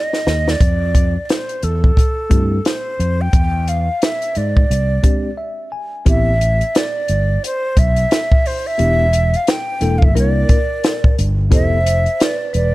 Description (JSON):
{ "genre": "hip hop, jazz-hop", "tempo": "88 BPM", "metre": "4/4", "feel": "swing 60% on 16ths", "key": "A minor", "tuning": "A4 = 440 Hz", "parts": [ { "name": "breathy hollow jazz flute", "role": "melody", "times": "0.0-12.7 s", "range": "A4 to G5", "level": "-20 LUFS", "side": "right 1 dB", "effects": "slapback echo" }, { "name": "compact cocktail drum kit", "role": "drums", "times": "0.1-12.7 s", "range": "hi-hat, kick drum, snare drum", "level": "-15 LUFS", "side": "equal", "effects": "none" }, { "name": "fretless electric bass", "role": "bass", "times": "0.3-12.7 s", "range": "E1 to G#2", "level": "-17 LUFS", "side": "equal", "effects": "wide subtle chorus" }, { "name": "mellow tine electric piano", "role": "accompaniment", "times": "2.3-11.8 s", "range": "G#3 to G#5", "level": "-23 LUFS", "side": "left 2 dB", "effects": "medium stereo tremolo" }, { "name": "vibraphone with medium mallets", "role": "second line", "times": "10.2-12.7 s", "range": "Bb4 to C5", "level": "-25 LUFS", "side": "equal", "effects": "none" } ], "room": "small room ambience", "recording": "none", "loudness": "-14 LUFS", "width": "side -18 dB against mid", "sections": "0.0-6.1 A section; 6.1-12.7 B section", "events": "drum fill 0.0-0.6; tine electric piano fill 5.0-6.1; break 5.4-6.1", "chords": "0.0 N.C.; 0.6 Fmaj7; 3.3 E7alt; 6.1 Am9; 8.8 Em7; 10.2 C9; 11.5 Fmaj9#11" }